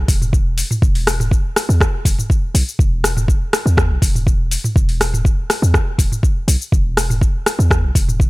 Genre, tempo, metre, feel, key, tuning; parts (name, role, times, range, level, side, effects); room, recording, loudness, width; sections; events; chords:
afro house; 122 BPM; 4/4; straight; A4 = 440 Hz
warm 808-style bass; bass; 0.0-8.3 s; E1 to E2; -17 LUFS; equal; tube saturation, sidechain pumping
afro-pop drum kit; drums; 0.1-8.3 s; hi-hat, rim click, shaker, toms; -19 LUFS; equal; studio reverb
electronic kick drum; drums; 0.1-8.3 s; -15 LUFS; equal; studio reverb
digital ambience; dry, gritty hardware recording; -14 LUFS; side -21 dB against mid
0.0-8.3 A section